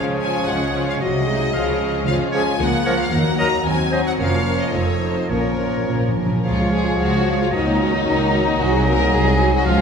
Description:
quick classical-period movement for symphony orchestra; 112 BPM; 2/4; rubato; Bb minor, Db major from 6.4 s; A4 = 443 Hz
clear studio violin section; melody; 0.0-9.8 s; Bb4 to Bb5; -28 LUFS; left 3 dB
bright oboe; second line; 0.0-9.8 s; Db5 to F5; -28 LUFS; right 2 dB
mellow clarinet; second line; 0.0-9.8 s; Db4 to C5; -27 LUFS; left 2 dB
warm studio violin section; second line; 0.0-9.8 s; Db4 to Bb4; -26 LUFS; left 4 dB
rich studio viola section; accompaniment; 0.0-9.8 s; F3 to Ab4; -25 LUFS; right 1 dB
warm bassoon; accompaniment; 0.0-9.8 s; F3 to Ab3; -28 LUFS; equal
mellow French horn section; sustained chords; 0.0-9.8 s; Eb3 to Gb4; -26 LUFS; left 2 dB
bright studio cello section; bass; 0.0-9.8 s; C2 to Db3; -25 LUFS; right 1 dB
warm studio double bass section; bass; 0.0-9.8 s; F1 to Eb2; -24 LUFS; right 3 dB
timpani; percussion; 5.3-6.4 s; Bb2; -24 LUFS; equal
mellow hollow silver concert flute; second line; 6.4-9.8 s; F5 to Bb5; -28 LUFS; left 4 dB
wet scoring stage reverb, RT60 1.7 s; heard from further back in the room; -16 LUFS; side -6 dB against mid
0.0-6.4 A section; 6.4-9.8 B section
timpani fill 5.3-6.4
0.0 Db; 1.0 Ab7/C; 1.5 Db; 2.6 Bbm/Db; 3.1 Ebm; 3.7 Cdim/Eb; 4.2 Bbm/F; 4.7 F7; 5.3 Bbm; 6.4 Db; 7.5 Ebm7/Db; 8.6 Ab7/C

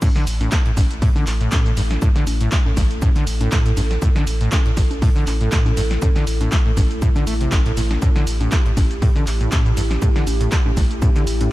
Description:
acid house; 120 BPM; 4/4; swing 55% on 16ths; A4 = 444 Hz
warbly tape-like pad; sustained chords; 0.4-11.5 s; A3 to A4; -28 LUFS; right 1 dB; chorus, built-in reverb, sidechain pumping
acid bass, saw; riff; 0.0-11.5 s; G2 to A3; -24 LUFS; equal; tube saturation, lush chorus, diffuse ambient delay
breakbeat sampler-style drum kit; drums; 0.0-11.5 s; hi-hat, shaker, snare drum; -38 LUFS; left 1 dB
electronic kick drum; drums; 0.0-11.1 s; -18 LUFS; equal
punchy analog drum machine; drums; 0.0-11.5 s; congas, crash cymbal, handclaps, hi-hat, shaker, snare drum; -26 LUFS; equal
warm sub bass; bass; 0.3-11.5 s; A1 to A2; -22 LUFS; equal; sidechain pumping
little or no reverb; -16 LUFS; side -17 dB against mid
0.0-11.5 A section
drop 0.0-11.5
0.0 A5

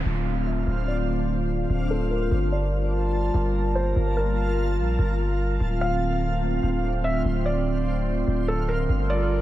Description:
hip hop; 146 BPM; 4/4; half-time; D minor; A4 = 439 Hz
felt-muted upright piano; melody; 0.0-9.4 s; A4 to F5; -31 LUFS; equal; low-pass filter, ping-pong delay
hollow soft pad; sustained chords; 0.0-9.4 s; D3 to A5; -27 LUFS; right 1 dB; chorus, low-pass filter
downlifter; sound effects; 0.0-2.3 s; -39 LUFS; right 1 dB
backwards swelling texture; texture; 0.0-9.4 s; Bb3 to A5; -34 LUFS; right 1 dB; built-in reverb
long sustained 808-style bass; bass; 0.1-9.4 s; D1 to Bb1; -25 LUFS; equal
digital ambience; -22 LUFS; side -14 dB against mid
0.0-9.4 A section
filter sweep 0.0-9.4
0.0 Dm7; 2.3 Gm9; 5.6 Dm7; 8.9 Gm9

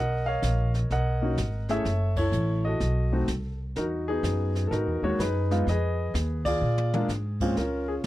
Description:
jazz piano trio; 126 BPM; 4/4; swing 66% on 8ths; A4 = 440 Hz
warm concert grand piano; melody; 0.0-8.1 s; Bb2 to F#5; -28 LUFS; equal
upright bass; bass; 0.0-8.1 s; Gb1 to Bb2; -27 LUFS; equal
jazz brush drum kit; drums; 0.4-8.1 s; brushed snare drum, crash cymbal, hi-hat, kick drum, snare drum, toms; -35 LUFS; equal
little or no reverb; dry, close 1970s-style studio recording; -24 LUFS; side -16 dB against mid
0.0-7.6 A section
band accent 2.1, 6.4; drum fill 6.6-7.1
0.0 Bmaj9; 1.9 Gbm7; 2.8 B7b9; 3.8 Emaj9#11; 5.7 Fm7b5; 6.6 Bb7; 7.6 Bbm

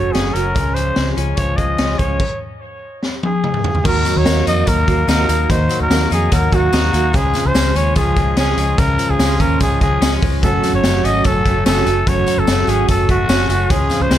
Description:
jangly indie pop; 146 BPM; 4/4; straight; Db major; A4 = 437 Hz
growling trumpet; melody; 0.0-14.2 s; Gb4 to Eb5; -19 LUFS; equal
picked twelve-string acoustic guitar; accompaniment; 0.0-14.2 s; Gb2 to Gb4; -23 LUFS; right 8 dB
clean electric guitar; arpeggios; 0.0-14.2 s; Gb2 to Eb4; -23 LUFS; left 6 dB; wide subtle chorus
vintage muted fingered electric bass; bass; 0.0-14.2 s; Gb1 to F2; -19 LUFS; equal
raw garage drum kit; drums; 0.1-14.2 s; crash cymbal, hi-hat, kick drum, snare drum, toms; -18 LUFS; equal
tambourine; percussion; 3.9-14.2 s; -35 LUFS; right 4 dB
light reverb; dark, warm production; -13 LUFS; side -11 dB against mid
0.0-3.9 A section; 3.9-14.2 B section
stop 2.2-3.9; drum fill 3.0-3.9
0.0 Gbm; 0.6 Db; 3.9 Ebm; 7.1 Db; 10.4 Gbm

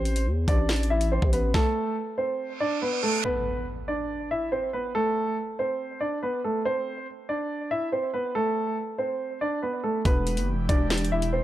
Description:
hip hop, drill; 141 BPM; 4/4; half-time; A4 = 440 Hz
dark baby grand piano; melody; 0.0-11.4 s; A3 to E5; -26 LUFS; right 1 dB; low-pass filter, analog delay
growling 808-style bass; bass; 0.0-1.5, 10.1-11.4 s; E1 to E2; -26 LUFS; equal
drill drum kit; drums; 0.1-1.6, 10.1-11.3 s; hi-hat, kick drum, snare drum; -25 LUFS; equal
reverse cymbal and impact; sound effects; 2.6-4.9 s; -33 LUFS; right 2 dB
airy breathy pad; sustained chords; 10.1-11.4 s; E3 to G4; -34 LUFS; right 2 dB; chorus
light reverb, digital ambience; echo-heavy mix; -24 LUFS; side -13 dB against mid
0.0-3.2 A section; 3.2-11.4 B section
stop 1.5-3.2; reverse cymbal 2.6-3.2; impact 3.2-4.9
0.0 Am; 1.5 N.C.; 6.6 Csus2; 8.3 N.C.; 10.1 Em7

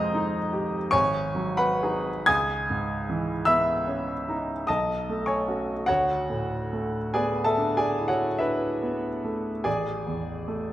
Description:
classical, impressionist solo piano; 42-52 BPM; 3/4; rubato; A4 = 440 Hz
clear baby grand piano; solo; 0.0-10.7 s; G#1 to G#6; -24 LUFS; equal
moderate recital hall reverb, RT60 1.6 s; -24 LUFS; side -14 dB against mid
0.0-10.7 A section
0.0 Fm9; 0.9 G#m7; 2.3 C#m9; 4.7 B9; 5.9 D69; 9.7 Amaj7(no3)

